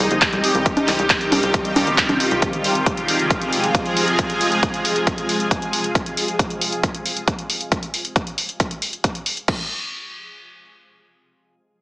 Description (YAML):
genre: uplifting trance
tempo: 136 BPM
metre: 4/4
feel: straight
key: F minor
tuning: A4 = 440 Hz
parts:
  - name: shimmering ambient pad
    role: sustained chords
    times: 0.0-5.9 s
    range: C3 to Ab4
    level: -20 LUFS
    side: equal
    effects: chorus, built-in reverb, phaser, sidechain pumping
  - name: tight sequencer bass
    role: bass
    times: 0.0-2.4 s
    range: G1 to C2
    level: -24 LUFS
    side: equal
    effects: sidechain pumping
  - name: punchy analog drum machine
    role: drums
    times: 0.0-9.6 s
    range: congas, crash cymbal, handclaps, hi-hat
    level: -22 LUFS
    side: equal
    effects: none
  - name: electronic kick drum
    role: drums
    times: 0.2-9.6 s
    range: none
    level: -22 LUFS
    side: equal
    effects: none
room: moderate digital room reverb, RT60 1.2 s, digital ambience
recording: heavily compressed radio sound, small speaker sound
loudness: -17 LUFS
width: side -22 dB against mid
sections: 0.0-9.5 A section; 9.5-11.8 B section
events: none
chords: 0.0 Cm; 2.4 Fm; 6.0 N.C.